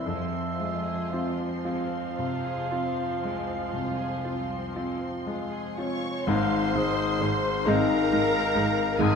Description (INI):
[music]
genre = classical, romantic movement for piano and orchestra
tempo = 37-46 BPM (dotted quarters)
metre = 12/8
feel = rubato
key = F minor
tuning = A4 = 440 Hz
[part]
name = clear concert grand piano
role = melody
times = 0.0-9.2 s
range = Ab1 to F4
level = -28 LUFS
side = left 3 dB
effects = none
[part]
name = muted symphonic violin section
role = melody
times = 0.0-9.2 s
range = Ab5 to Db6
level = -36 LUFS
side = left 2 dB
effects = none
[part]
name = dark cor anglais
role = second line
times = 0.0-9.2 s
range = C5 to F5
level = -32 LUFS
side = right 3 dB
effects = none
[part]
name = muted symphonic violin section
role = second line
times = 0.0-9.2 s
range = Ab3 to Db5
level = -36 LUFS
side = left 1 dB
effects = none
[part]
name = muted symphonic viola section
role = accompaniment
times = 0.0-9.1 s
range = F3 to Eb4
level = -35 LUFS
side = equal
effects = none
[part]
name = muted symphonic cello section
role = bass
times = 0.1-9.1 s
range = C2 to Ab2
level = -36 LUFS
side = right 4 dB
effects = none
[part]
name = mellow hollow small flute group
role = second line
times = 5.8-9.2 s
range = Ab4 to Db5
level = -34 LUFS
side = left 2 dB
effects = none
[part]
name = mellow French horn section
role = sustained chords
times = 6.3-9.2 s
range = C4 to Eb4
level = -35 LUFS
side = left 7 dB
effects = none
[part]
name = mellow trombone section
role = sustained chords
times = 6.3-9.2 s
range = Ab2 to Ab3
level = -34 LUFS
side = right 1 dB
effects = none
[part]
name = muted symphonic double bass section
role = bass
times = 6.3-9.1 s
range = Ab1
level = -33 LUFS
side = right 6 dB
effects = none
[sound]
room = moderate scoring stage reverb, RT60 1.8 s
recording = minimal, uncompressed stereo recording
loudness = -25 LUFS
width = side -6 dB against mid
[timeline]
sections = 0.0-6.3 A section; 6.3-9.2 B section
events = none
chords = 0.1 Fm; 6.3 Ab